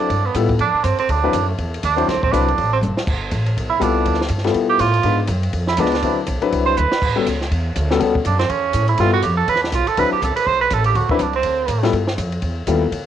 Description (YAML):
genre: jazz, small-group swing and bop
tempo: 244 BPM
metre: 4/4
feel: swing 59% on 8ths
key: unclear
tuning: A4 = 440 Hz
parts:
  - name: warm tenor saxophone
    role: second line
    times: 0.0-11.9 s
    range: A3 to C5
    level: -19 LUFS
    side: right 7 dB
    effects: none
  - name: warm concert grand piano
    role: accompaniment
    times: 0.0-12.8 s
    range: F#3 to C5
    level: -20 LUFS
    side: left 7 dB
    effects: none
  - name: upright bass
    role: bass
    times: 0.0-13.1 s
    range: F#1 to B2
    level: -21 LUFS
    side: equal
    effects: none
  - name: compact cocktail drum kit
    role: drums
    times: 0.0-13.0 s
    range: crash cymbal, hi-hat, kick drum, ride cymbal, snare drum, toms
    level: -25 LUFS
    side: equal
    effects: cassette tape
room: moderate spring reverb, RT60 1.6 s, studio ambience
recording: home recording on cassette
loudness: -16 LUFS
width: side -10 dB against mid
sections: 0.0-10.9 A section; 10.9-13.1 A section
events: tenor saxophone solo 0.0-13.1; drum fill 2.8, 6.8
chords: 0.1 G13; 1.1 D13; 3.1 G13; 5.0 G#dim7; 6.0 D13; 7.0 A13; 9.0 G13; 10.0 D13; 10.9 D7sus2; 11.9 G13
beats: | 0.10 0.35 0.60 0.85 | 1.09 1.34 1.59 1.83 | 2.08 2.33 2.58 2.82 | 3.07 3.32 3.56 3.81 | 4.06 4.30 4.55 4.80 | 5.04 5.29 5.54 5.78 | 6.03 6.28 6.52 6.77 | 7.01 7.26 7.51 7.75 | 8.00 8.24 8.49 8.74 | 8.98 9.23 9.47 9.72 | 9.96 10.21 10.46 10.70 | 10.95 11.19 11.44 11.69 | 11.93 12.18 12.42 12.67 | 12.91